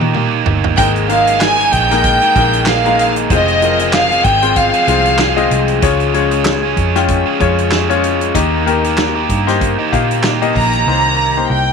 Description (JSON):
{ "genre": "piano-driven pop", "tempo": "95 BPM", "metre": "4/4", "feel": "swing 56% on 16ths", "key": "unclear", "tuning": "A4 = 440 Hz", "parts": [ { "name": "warm chamber violin section", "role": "melody", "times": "0.0-5.5, 10.6-11.7 s", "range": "G4 to Bb5", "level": "-14 LUFS", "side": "equal", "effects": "none" }, { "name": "bright concert grand piano", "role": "accompaniment", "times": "0.0-11.7 s", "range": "Ab2 to G5", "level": "-17 LUFS", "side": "left 12 dB", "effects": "none" }, { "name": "overdriven electric guitar", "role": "riff", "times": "0.0-11.4 s", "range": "F2 to Ab4", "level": "-19 LUFS", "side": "right 16 dB", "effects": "none" }, { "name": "vintage muted picked electric bass", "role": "bass", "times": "0.0-11.7 s", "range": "F1 to Bb2", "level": "-19 LUFS", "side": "right 1 dB", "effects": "none" }, { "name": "natural country drum kit", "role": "drums", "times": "0.0-10.9 s", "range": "handclaps, hi-hat, kick drum, snare drum, toms", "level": "-19 LUFS", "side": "right 1 dB", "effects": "none" } ], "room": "light reverb", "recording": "1960s-style stereo with parts hard left and right", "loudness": "-11 LUFS", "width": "side -5 dB against mid", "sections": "0.8-10.9 A section", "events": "drum fill 0.0-0.8", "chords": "0.0 Eb; 0.8 Absus2; 3.3 Fm; 5.8 Db; 8.4 Eb; 10.9 Cm7" }